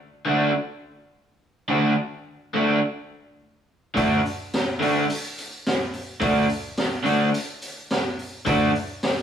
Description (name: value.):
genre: garage rock duo or trio.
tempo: 106 BPM.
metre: 4/4.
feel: straight.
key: D major.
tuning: A4 = 440 Hz.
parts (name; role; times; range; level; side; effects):
crunchy overdriven guitar; riff; 0.3-8.7 s; D3 to F#4; -21 LUFS; equal; none.
raw garage drum kit; drums; 4.0-9.2 s; hi-hat, kick drum, snare drum; -26 LUFS; equal; none.
room: moderate stone room reverb, RT60 1.2 s.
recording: band playing live in one room, small room ambience.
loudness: -21 LUFS.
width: side -8 dB against mid.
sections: 0.0-9.2 A section.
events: none.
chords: 0.0 D.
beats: 0.00 0.56 1.13 | 1.70 2.26 2.83 3.39 | 3.96 4.53 5.09 5.65 | 6.22 6.78 7.34 7.91 | 8.47 9.03.